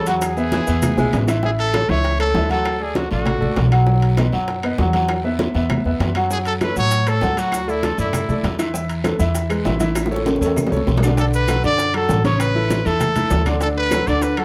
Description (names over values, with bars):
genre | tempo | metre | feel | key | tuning
latin, salsa | 197 BPM | 4/4 | straight | A major | A4 = 440 Hz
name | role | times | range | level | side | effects
bright trumpet | melody | 0.0-3.7, 6.3-8.6, 11.2-14.4 s | E4 to D5 | -24 LUFS | equal | plate reverb
clear baritone saxophone | second line | 0.0-1.2 s | C#3 to G#3 | -28 LUFS | equal | none
upright bass | bass | 0.0-14.4 s | A1 to A2 | -23 LUFS | equal | none
clear concert grand piano | accompaniment | 0.1-14.4 s | C#3 to F#5 | -24 LUFS | equal | none
bongos | percussion | 0.1-14.4 s | none | -30 LUFS | equal | none
guiro | percussion | 0.1-14.4 s | none | -39 LUFS | equal | none
maracas | percussion | 0.1-1.4, 6.3-14.4 s | none | -38 LUFS | equal | none
timbales | percussion | 0.1-14.4 s | none | -31 LUFS | equal | none
claves | percussion | 0.2-14.4 s | none | -38 LUFS | equal | none
congas | percussion | 0.2-14.4 s | none | -29 LUFS | equal | none
room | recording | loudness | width
moderate small room reverb, RT60 0.5 s | none | -19 LUFS | mono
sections
0.0-1.4 A section; 1.4-11.2 B section; 11.2-14.4 A section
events
drum fill 0.8-1.4, 10.0-11.2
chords
0.2 Eadd9; 1.4 A; 2.7 D; 3.9 B; 5.1 Esus2; 6.3 F#m; 7.5 Dadd9; 8.7 Esus4; 9.3 E; 10.0 A; 11.2 Bm7; 12.4 Aadd9; 13.6 D